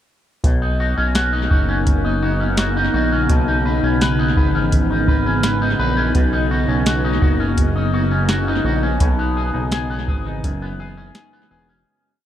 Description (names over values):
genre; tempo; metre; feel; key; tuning
dream pop; 84 BPM; 4/4; straight; B major; A4 = 443 Hz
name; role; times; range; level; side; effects
ethereal airy pad; sustained chords; 1.3-11.8 s; C#3 to F#4; -22 LUFS; equal; ensemble chorus, built-in reverb
electric guitar with an envelope filter; arpeggios; 0.4-12.2 s; F#2 to B4; -22 LUFS; left 2 dB; lush chorus, analog delay
fat analog bass; bass; 0.4-11.8 s; E1 to B1; -21 LUFS; equal; none
soft vintage rhythm box; drums; 0.4-11.3 s; hi-hat, kick drum, snare drum; -19 LUFS; equal; analog delay
room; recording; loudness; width
light reverb; echo-heavy mix; -16 LUFS; side -11 dB against mid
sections
0.4-11.9 verse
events
fade-out 9.0-11.9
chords
0.4 Bmaj9; 3.3 C#m9; 6.2 Bmaj9; 9.0 C#m9/B; 10.4 F#9sus4